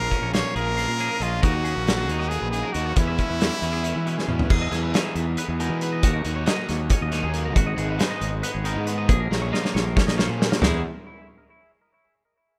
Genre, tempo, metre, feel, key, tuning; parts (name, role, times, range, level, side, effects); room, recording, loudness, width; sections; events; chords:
math rock and midwest emo; 274 BPM (eighths); 7/8; straight; E lydian; A4 = 440 Hz
brilliant trumpet; melody; 0.0-4.3 s; E4 to C#5; -30 LUFS; equal
twangy electric guitar; accompaniment; 0.0-10.8 s; E2 to G#4; -34 LUFS; equal
twelve-string electric guitar; arpeggios; 0.0-10.8 s; E4 to E#5; -36 LUFS; equal; analog delay
overdriven electric guitar; riff; 0.0-10.8 s; A#2 to G#4; -36 LUFS; equal
fuzz fingered electric bass; bass; 0.0-10.8 s; G#1 to E3; -29 LUFS; equal; overdrive
loose indie drum kit; drums; 0.1-10.7 s; crash cymbal, hi-hat, kick drum, snare drum, toms; -26 LUFS; equal
studio ambience; rough home demo mix; -23 LUFS; mono
0.0-4.5 A section; 4.5-10.6 B section; 10.6-12.2 C section
drum fill 4.2-4.5, 9.3-10.6
0.0 A#m7; 1.4 D#m7; 3.0 E6; 4.5 Emaj7; 6.0 D#m7; 7.6 G#m7; 9.1 A#m7; 10.6 Emaj7